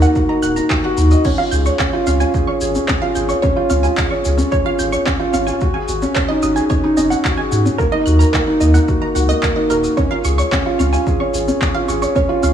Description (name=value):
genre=piano and strings electronica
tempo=110 BPM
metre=4/4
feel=straight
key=Db major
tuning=A4 = 440 Hz
part: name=wide unison pluck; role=arpeggios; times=0.0-12.5 s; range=Bb4 to G6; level=-23 LUFS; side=right 4 dB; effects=sidechain pumping, digital delay
part: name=felt-muted upright piano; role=riff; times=0.0-12.5 s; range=Bb3 to Eb5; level=-17 LUFS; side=equal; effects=digital delay
part: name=warm sub bass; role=bass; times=0.0-12.5 s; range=Eb1 to Ab2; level=-16 LUFS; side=equal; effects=tube saturation, sidechain pumping
part: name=organic electronic drum kit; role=drums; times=0.0-12.5 s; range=crash cymbal, handclaps, shaker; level=-25 LUFS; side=equal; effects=overdrive
part: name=electronic kick drum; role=drums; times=0.2-12.3 s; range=none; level=-21 LUFS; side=equal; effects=overdrive
room=light reverb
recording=small room ambience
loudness=-14 LUFS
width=side -9 dB against mid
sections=0.0-12.5 A section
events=none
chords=0.0 Ebm; 1.2 Db; 5.6 Ab7sus4; 7.8 Ebm; 10.0 Db